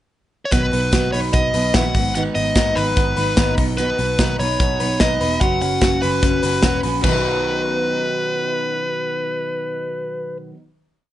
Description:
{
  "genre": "jangly indie pop",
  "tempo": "148 BPM",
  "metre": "4/4",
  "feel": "straight",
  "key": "B major",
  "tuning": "A4 = 442 Hz",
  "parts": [
    { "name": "smooth overdriven lead guitar", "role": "melody", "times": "0.5-10.4 s", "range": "B4 to F#5", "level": "-22 LUFS", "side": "equal", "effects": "slapback echo" },
    { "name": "picked steel-string acoustic guitar", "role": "accompaniment", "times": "0.5-10.6 s", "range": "G#2 to B4", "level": "-26 LUFS", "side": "right 5 dB", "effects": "none" },
    { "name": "electric guitar through a small old amp", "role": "arpeggios", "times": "0.5-10.6 s", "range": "G#2 to B4", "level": "-24 LUFS", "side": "left 2 dB", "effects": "analog chorus, slapback echo" },
    { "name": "vintage muted picked electric bass", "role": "bass", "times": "0.5-10.4 s", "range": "E1 to B1", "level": "-24 LUFS", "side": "equal", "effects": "none" },
    { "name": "modern studio drum kit", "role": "drums", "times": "0.5-7.1 s", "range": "crash cymbal, hi-hat, kick drum, snare drum", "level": "-20 LUFS", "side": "equal", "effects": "none" }
  ],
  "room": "light reverb",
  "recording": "nothing above 10.6 kHz",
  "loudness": "-16 LUFS",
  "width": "side -13 dB against mid",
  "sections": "0.0-0.5 pickup bar; 0.5-7.0 verse; 7.0-10.3 final chord",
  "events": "none",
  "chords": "0.0 N.C.; 0.5 B; 1.9 G#m7; 3.6 B; 5.4 F#sus4; 7.0 B",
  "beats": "0.12 | 0.52 0.93 1.34 1.75 | 2.15 2.56 2.97 3.37 | 3.78 4.19 4.60 5.00 | 5.41 5.82 6.23 6.63 | 7.04 7.44 7.85 8.26 | 8.66 9.07 9.47 9.88"
}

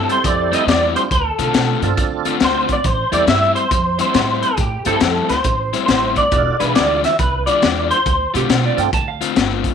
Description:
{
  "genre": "electric blues shuffle",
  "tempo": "138 BPM",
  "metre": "4/4",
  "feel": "swing 65% on 8ths",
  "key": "A minor",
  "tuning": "A4 = 440 Hz",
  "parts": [
    { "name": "electric guitar through a small old amp", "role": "melody", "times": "0.0-8.3 s", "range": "G4 to E5", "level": "-17 LUFS", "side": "right 1 dB", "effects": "ensemble chorus" },
    { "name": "raw garage guitar", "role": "riff", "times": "0.0-9.7 s", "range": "A2 to F4", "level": "-22 LUFS", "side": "left 11 dB", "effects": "overdrive" },
    { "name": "upright bass", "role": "bass", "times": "0.0-9.6 s", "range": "E1 to C3", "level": "-23 LUFS", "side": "right 2 dB", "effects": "none" },
    { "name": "tonewheel organ", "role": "accompaniment", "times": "0.1-8.9 s", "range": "C4 to A4", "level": "-23 LUFS", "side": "right 12 dB", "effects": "slow rotary speaker, overdrive, chorus vibrato" },
    { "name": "crunchy breakbeat drum kit", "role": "drums", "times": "0.1-9.7 s", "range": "hi-hat, kick drum, snare drum", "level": "-20 LUFS", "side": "left 3 dB", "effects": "none" },
    { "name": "electric slide guitar", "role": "second line", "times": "8.4-9.3 s", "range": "G4 to A5", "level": "-22 LUFS", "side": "right 14 dB", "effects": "none" }
  ],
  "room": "light reverb, studio ambience",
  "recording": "1960s-style stereo with parts hard left and right",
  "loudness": "-14 LUFS",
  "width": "side -7 dB against mid",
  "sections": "0.0-9.7 A section",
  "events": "none",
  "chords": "0.0 Am7; 1.1 Dm7; 2.8 Am7; 6.3 E7b9; 8.1 Dm7",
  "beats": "0.24 0.68 | 1.11 1.54 1.98 2.41 | 2.85 3.28 3.71 4.15 | 4.58 5.01 5.45 5.88 | 6.32 6.75 7.19 7.62 | 8.05 8.49 8.92 9.36"
}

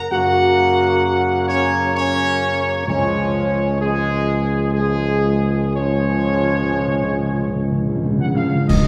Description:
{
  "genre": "classical, ceremonial fanfare",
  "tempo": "59-65 BPM",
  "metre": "3/4",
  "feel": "straight",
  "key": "Db major",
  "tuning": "A4 = 438 Hz",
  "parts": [
    { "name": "mellow trumpet section", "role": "melody", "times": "0.1-8.9 s", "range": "Ab4 to Gb5", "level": "-24 LUFS", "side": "equal", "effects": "none" },
    { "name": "clear trombone section", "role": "sustained chords", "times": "0.1-8.9 s", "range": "Db3 to Bb3", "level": "-27 LUFS", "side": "equal", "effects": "none" },
    { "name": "mellow French horn section", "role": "sustained chords", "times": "0.1-8.9 s", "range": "Ab3 to Gb4", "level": "-24 LUFS", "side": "equal", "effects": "none" },
    { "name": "mellow tuba", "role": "bass", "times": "0.1-8.9 s", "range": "Db2 to Gb2", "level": "-24 LUFS", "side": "equal", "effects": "none" },
    { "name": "timpani", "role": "percussion", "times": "2.9-8.9 s", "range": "Db3", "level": "-24 LUFS", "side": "equal", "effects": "none" },
    { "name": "clash cymbals and concert bass drum", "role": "percussion", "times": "8.7-8.9 s", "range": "none", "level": "-20 LUFS", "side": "equal", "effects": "none" }
  ],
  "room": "wet scoring stage reverb, RT60 1.9 s",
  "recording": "heard from further back in the room",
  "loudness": "-18 LUFS",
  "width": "mono",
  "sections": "0.0-8.7 A section",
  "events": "timpani fill 5.8-8.7; band accent 8.7",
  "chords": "0.0 Gb; 2.9 Db",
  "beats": "| 0.10 1.02 1.94 | 2.87 3.79 4.75 | 5.75 6.74 7.71 | 8.69"
}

